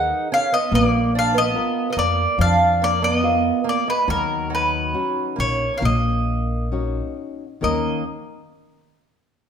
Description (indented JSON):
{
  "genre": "fado-style ballad",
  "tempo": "71 BPM",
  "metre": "4/4",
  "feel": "rubato",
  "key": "Eb minor",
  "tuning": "A4 = 439 Hz",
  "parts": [
    { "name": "mandolin", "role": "melody", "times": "0.0-8.0 s", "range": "Bb4 to Gb5", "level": "-21 LUFS", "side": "equal", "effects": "none" },
    { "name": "fingerpicked twelve-string acoustic guitar", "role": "second line", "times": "0.0-8.0 s", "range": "Gb3 to Eb4", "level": "-26 LUFS", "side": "right 6 dB", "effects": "none" },
    { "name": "nylon-string guitar", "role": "accompaniment", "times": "0.0-8.0 s", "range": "Eb3 to F5", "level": "-25 LUFS", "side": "left 1 dB", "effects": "none" },
    { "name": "upright bass", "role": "bass", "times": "0.0-8.0 s", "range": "Bb1 to F2", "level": "-24 LUFS", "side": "left 1 dB", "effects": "none" }
  ],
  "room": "moderate recital hall reverb, RT60 1.3 s",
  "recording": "minimal, uncompressed stereo recording",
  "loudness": "-18 LUFS",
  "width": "side -7 dB against mid",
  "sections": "0.0-7.6 A section; 7.6-9.5 B section",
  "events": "none",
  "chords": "0.0 Abmadd9; 0.7 Bb5; 4.1 Ebm7; 7.6 Eb5",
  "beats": "| 0.72 1.56 2.39 3.24 | 4.09 4.96 5.83 6.73 | 7.63"
}